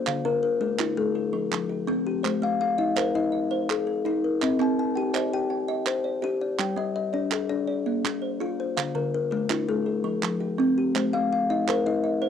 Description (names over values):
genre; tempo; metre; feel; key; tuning
southern african traditional, mbira-style interlocking cycle; 110 BPM (dotted quarters); 12/8; straight; unclear; A4 = 436 Hz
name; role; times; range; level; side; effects
kalimba; arpeggios; 0.0-12.3 s; D3 to A5-29c; -24 LUFS; left 5 dB; cassette tape
kalimba; arpeggios; 0.0-12.3 s; D3 to G5; -30 LUFS; right 10 dB; cassette tape
group handclap; percussion; 0.1-11.9 s; none; -29 LUFS; right 9 dB; none
room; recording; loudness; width
moderate studio reverb, RT60 0.6 s; home recording on cassette; -23 LUFS; side -8 dB against mid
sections
0.0-12.3 A section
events
none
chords
0.1 Dm; 1.2 F; 2.2 Am; 4.4 C; 6.6 Gm; 7.7 Bb; 8.8 Dm; 9.9 F; 11.0 Am